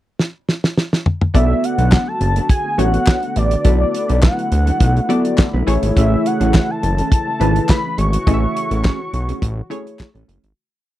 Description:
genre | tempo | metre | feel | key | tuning
early-eighties boogie funk | 104 BPM | 4/4 | straight | B dorian | A4 = 440 Hz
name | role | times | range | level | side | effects
damped 70s drum kit | drums | 0.2-10.6 s | handclaps, hi-hat, kick drum, snare drum, toms | -15 LUFS | equal | none
funky polysynth comp | accompaniment | 1.3-10.1 s | A3 to E5 | -20 LUFS | left 1 dB | chorus
brassy analog pad | sustained chords | 1.3-10.5 s | C#3 to F#4 | -27 LUFS | left 1 dB | chorus
mellow electric guitar | riff | 1.3-10.5 s | E3 to B4 | -27 LUFS | right 1 dB | lush chorus
fat analog bass | bass | 1.3-10.5 s | F#1 to D2 | -16 LUFS | equal | none
fat analog lead | melody | 1.4-10.0 s | D5 to C#6 | -22 LUFS | equal | chorus, slapback echo
group handclap | percussion | 1.9-10.1 s | none | -30 LUFS | left 6 dB | none
room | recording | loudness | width
little or no reverb | dry, close 1970s-style studio recording | -14 LUFS | side -14 dB against mid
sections
0.0-1.3 pickup bar; 1.3-10.6 verse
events
drum fill 0.2-1.3; fade-out 8.3-10.6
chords
0.0 N.C.; 1.3 Bm7; 5.7 Amaj7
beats
0.19 0.77 | 1.34 1.92 2.50 3.07 | 3.65 4.23 4.80 5.38 | 5.96 6.54 7.11 7.69 | 8.27 8.84 9.42 10.00

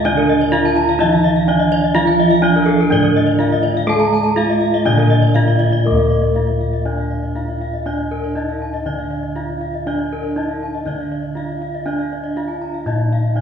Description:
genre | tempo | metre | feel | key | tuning
Balinese gamelan | 122 BPM | 4/4 | uneven beats | D pelog | A4 = 441 Hz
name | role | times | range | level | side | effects
gamelan-type bronze metallophone | melody | 0.0-13.4 s | Bb3-40c to A4-45c | -19 LUFS | right 1 dB | none
gamelan-type bronze metallophone | accompaniment | 0.0-5.9 s | D3 to A3-45c | -21 LUFS | right 2 dB | none
gamelan-type bronze metallophone | arpeggios | 0.0-13.4 s | Bb4-40c to Bb5-40c | -22 LUFS | left 4 dB | none
gamelan-type bossed gongs | bass | 0.0-13.4 s | D2 to Bb4-40c | -20 LUFS | left 1 dB | none
gamelan-type bronze metallophone | arpeggios | 0.2-13.4 s | A4-45c to Bb5-40c | -25 LUFS | right 2 dB | none
room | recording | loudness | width
wet concert hall reverb, RT60 2.4 s | recorded in a church or concert hall, small room reverb | -15 LUFS | side -7 dB against mid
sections
0.0-5.9 A section; 5.9-13.4 B section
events
none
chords
none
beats
| 0.05 0.53 1.00 1.48 | 1.95 2.43 2.91 3.39 | 3.88 4.37 4.86 5.36 | 5.86 6.36 6.86 7.36 | 7.86 8.36 8.86 9.36 | 9.86 10.36 10.86 11.36 | 11.86 12.36 12.86 13.37

